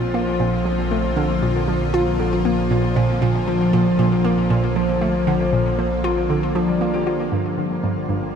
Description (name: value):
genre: ambient, sequencer-driven space music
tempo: 117 BPM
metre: 4/4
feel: straight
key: unclear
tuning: A4 = 445 Hz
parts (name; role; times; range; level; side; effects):
- evolving wavetable pad; sustained chords; 0.0-8.4 s; D3 to G4; -21 LUFS; left 1 dB; ensemble chorus, built-in reverb, shimmer reverb
- concert harp; arpeggios; 0.0-8.4 s; G3 to C5; -27 LUFS; left 2 dB; auto-pan, shimmer reverb, ping-pong delay
- hollow square pluck; riff; 0.0-8.3 s; G2 to F4; -21 LUFS; right 2 dB; chorus, phaser, shimmer reverb, ping-pong delay
- fat analog bass; bass; 0.0-8.4 s; G1 to Bb1; -27 LUFS; equal; none
room: wet concert hall reverb, RT60 2.2 s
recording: none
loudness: -17 LUFS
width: side -7 dB against mid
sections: 0.0-7.3 A section; 7.3-8.4 B section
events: none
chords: 0.0 Bb; 7.3 Gm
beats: 0.14 0.66 | 1.17 1.68 2.19 2.71 | 3.22 3.73 4.25 4.76 | 5.27 5.78 6.30 6.81 | 7.32 7.83 8.35